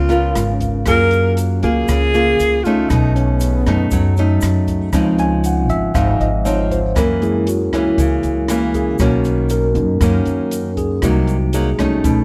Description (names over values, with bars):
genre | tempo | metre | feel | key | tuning
bossa nova | 118 BPM | 4/4 | straight | Db major | A4 = 440 Hz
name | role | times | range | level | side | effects
breathy alto saxophone | melody | 0.0-3.9 s | Db4 to Bb4 | -21 LUFS | equal | none
mellow hollow alto flute | second line | 0.0-4.6 s | Cb4 to Db4 | -31 LUFS | equal | none
nylon-string guitar | accompaniment | 0.0-12.2 s | Gb2 to Bb4 | -22 LUFS | equal | none
tine electric piano | accompaniment | 0.0-0.1, 3.4-12.2 s | F3 to Ab5 | -22 LUFS | equal | none
upright bass | bass | 0.0-12.2 s | Ab1 to Gb2 | -21 LUFS | equal | none
open jazz drum kit | drums | 0.1-12.2 s | hi-hat, kick drum, rim click | -25 LUFS | equal | none
egg shaker | percussion | 0.1-12.2 s | none | -39 LUFS | equal | none
room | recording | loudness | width
moderate large studio reverb, RT60 1.3 s | none | -16 LUFS | mono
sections
0.0-4.9 A section; 4.9-12.2 B section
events
tine electric piano solo 4.9-12.2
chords
0.0 Db6; 0.9 Gbmaj9; 2.9 Cb9; 4.9 Dbmaj9; 7.0 Gb7; 9.0 Cbmaj9; 11.0 Cm7b5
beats
0.36 | 0.87 1.38 1.89 2.40 | 2.90 3.41 3.92 4.43 | 4.94 5.44 5.95 6.46 | 6.97 7.47 7.98 8.49 | 9.00 9.51 10.02 10.52 | 11.03 11.54 12.05